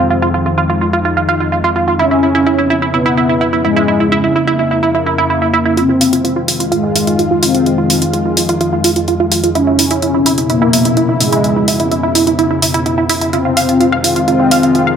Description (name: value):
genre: melodic techno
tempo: 127 BPM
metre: 4/4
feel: straight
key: unclear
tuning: A4 = 440 Hz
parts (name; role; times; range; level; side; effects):
- mellow synth brass; melody; 0.0-15.0 s; Ab3 to Db4; -15 LUFS; left 2 dB; chorus, tape echo
- lush unison pad; sustained chords; 0.0-15.0 s; Cb3 to F4; -17 LUFS; left 2 dB; chorus
- tight sequenced synth; arpeggios; 0.0-14.9 s; Fb4 to F5; -15 LUFS; right 4 dB; chorus, phaser, dub echo
- analog drone; drone; 0.0-15.0 s; F2; -23 LUFS; left 1 dB; chorus
- house drum kit; drums; 5.8-14.8 s; hi-hat, toms; -16 LUFS; equal; high-pass filter on hats, low-pass filter on hats, studio reverb, high-pass filter on toms, low-pass filter on toms
room: moderate spring reverb, RT60 1.6 s, digital ambience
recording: echo-heavy mix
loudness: -11 LUFS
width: side -7 dB against mid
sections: 0.0-5.8 A section; 5.8-15.0 B section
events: filter sweep on analog synth pad 0.0-5.8; build-up 5.8-15.0; filter sweep on synth arpeggio sound 5.8-15.0; filter sweep on analog polysynth 5.8-15.0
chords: 0.0 Fm7; 2.0 Dbm7; 5.8 Fm7; 9.6 Dbm7; 13.3 Fm7